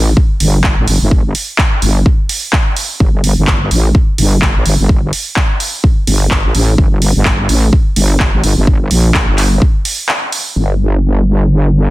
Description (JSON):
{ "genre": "bass house", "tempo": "127 BPM", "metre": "4/4", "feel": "swing 59% on 16ths", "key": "G minor", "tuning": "A4 = 440 Hz", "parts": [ { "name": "wobble bass", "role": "bass", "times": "0.0-11.9 s", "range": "G1 to Bb1", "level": "-11 LUFS", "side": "equal", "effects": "chorus, overdrive, sidechain pumping" }, { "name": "electronic kick drum", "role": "drums", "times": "0.2-9.7 s", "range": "none", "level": "-12 LUFS", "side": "equal", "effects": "none" }, { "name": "house drum kit", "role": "drums", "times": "0.4-10.4 s", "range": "handclaps, hi-hat", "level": "-16 LUFS", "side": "right 1 dB", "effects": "overdrive" } ], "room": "little or no reverb", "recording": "dense, heavily limited modern master", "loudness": "-10 LUFS", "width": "side -18 dB against mid", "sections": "0.0-10.6 A section; 10.6-11.9 B section", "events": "filter sweep on wobble bass 0.0-10.6; break 10.1-10.6", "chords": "none", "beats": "0.17 0.64 | 1.11 1.58 2.06 2.53 | 3.00 3.48 3.95 4.42 | 4.89 5.37 5.84 6.31 | 6.78 7.25 7.73 8.20 | 8.67 9.14 9.62 10.09 | 10.56 11.03 11.51" }